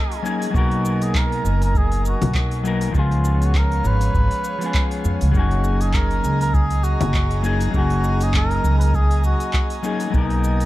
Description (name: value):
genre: sunset chillout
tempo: 100 BPM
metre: 4/4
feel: swing 56% on 16ths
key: F# major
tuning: A4 = 442 Hz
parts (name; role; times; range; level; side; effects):
- trumpet with cup mute; melody; 0.0-10.7 s; D#4 to B4; -26 LUFS; equal; digital delay
- clean electric guitar; accompaniment; 0.0-10.7 s; E#3 to A#4; -25 LUFS; moving between left 5 dB and right 7 dB; auto-pan
- airy breathy pad; sustained chords; 0.0-10.7 s; G#4 to A#5; -31 LUFS; right 1 dB; chorus
- deep house drum kit; drums; 0.1-10.7 s; congas, handclaps, hi-hat, shaker; -29 LUFS; left 2 dB; none
- upright bass; bass; 0.5-10.7 s; F#1 to E#2; -19 LUFS; equal; none
- electronic kick drum; drums; 0.5-10.3 s; none; -21 LUFS; equal; none
room: light reverb, digital ambience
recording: dark, warm production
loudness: -17 LUFS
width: side -16 dB against mid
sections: 0.0-10.7 A section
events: none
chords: 0.0 F#69; 0.5 Bmaj7; 2.9 C#7; 5.3 F#69; 10.1 Bmaj7